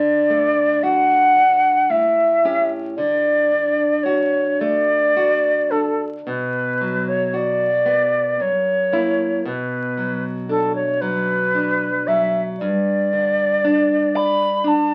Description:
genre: romantic duo for flute and classical guitar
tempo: 56 BPM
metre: 3/4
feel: uneven beats, rubato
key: D major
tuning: A4 = 445 Hz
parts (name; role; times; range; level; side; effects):
- hollow concert flute; melody; 0.0-14.9 s; A4 to B5; -20 LUFS; equal; none
- nylon-string guitar; accompaniment; 0.0-14.9 s; F#2 to D5; -25 LUFS; equal; none
room: wet studio ambience, RT60 0.5 s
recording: very old 78 rpm record, vinyl crackle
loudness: -19 LUFS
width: mono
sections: 0.0-14.9 A section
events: none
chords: 0.0 D; 1.9 A7; 3.0 D; 6.3 Bm; 8.4 F#7; 9.5 Bm; 12.6 G5

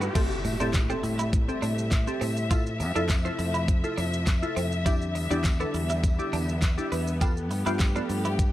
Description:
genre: dance-pop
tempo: 102 BPM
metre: 4/4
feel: straight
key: A minor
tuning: A4 = 440 Hz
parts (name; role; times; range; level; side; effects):
- glassy wavetable pluck; accompaniment; 0.0-8.4 s; B3 to A4; -32 LUFS; left 1 dB; chorus, sidechain pumping
- dark studio string section; sustained chords; 0.0-8.5 s; C3 to E5; -33 LUFS; left 2 dB; sidechain pumping
- twelve-string electric guitar; riff; 0.0-8.4 s; A3 to G4; -34 LUFS; right 4 dB; lush chorus
- fingered electric bass; bass; 0.0-8.5 s; E2 to A2; -29 LUFS; equal; sidechain pumping
- pop drum kit; drums; 0.0-8.5 s; crash cymbal, handclaps, hi-hat, kick drum, shaker, snare drum; -27 LUFS; equal; none
- riser and impact; sound effects; 0.0-2.5 s; none; -35 LUFS; equal; none
- tambourine; percussion; 0.2-8.5 s; none; -48 LUFS; left 3 dB; none
room: digital ambience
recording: dry, gritty hardware recording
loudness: -24 LUFS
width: side -14 dB against mid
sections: 0.2-8.5 A section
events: riser 0.0; impact 0.2-2.5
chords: 0.2 Am7; 2.5 Fmaj7; 4.9 Em7

